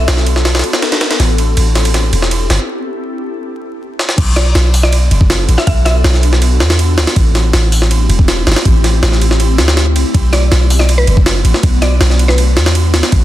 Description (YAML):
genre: drum and bass, jungle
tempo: 161 BPM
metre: 4/4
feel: straight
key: B phrygian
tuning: A4 = 442 Hz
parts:
  - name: mallet-like synth pluck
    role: melody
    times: 0.0-0.4, 4.4-6.4, 10.3-12.6 s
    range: B4 to E5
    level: -21 LUFS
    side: equal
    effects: chorus, vintage 12-bit sampler grit, dub echo
  - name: ethereal airy pad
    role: sustained chords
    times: 0.0-13.2 s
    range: A3 to A4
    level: -20 LUFS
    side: left 1 dB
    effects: ensemble chorus, built-in reverb
  - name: warm 808-style bass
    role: bass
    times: 0.0-13.2 s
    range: E1 to E2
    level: -11 LUFS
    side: equal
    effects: tube saturation
  - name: jungle sampler-style drum kit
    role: drums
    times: 0.1-13.2 s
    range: crash cymbal, hi-hat, kick drum, ride cymbal, snare drum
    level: -14 LUFS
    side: equal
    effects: high-pass filter on cymbals, studio reverb, high-pass filter on kick, high-pass filter on snare, high-pass filter on hats
room: little or no reverb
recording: dense, heavily limited modern master, vinyl crackle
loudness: -9 LUFS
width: side -14 dB against mid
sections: 0.0-4.2 A section; 4.2-13.2 B section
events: build-up 0.0-4.2; drum fill 1.2-2.7, 4.0; break 2.7-4.2; drop 4.2-13.2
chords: 0.0 Bm7; 1.2 Am7; 4.2 Bm7; 7.2 Am7; 10.1 Bm7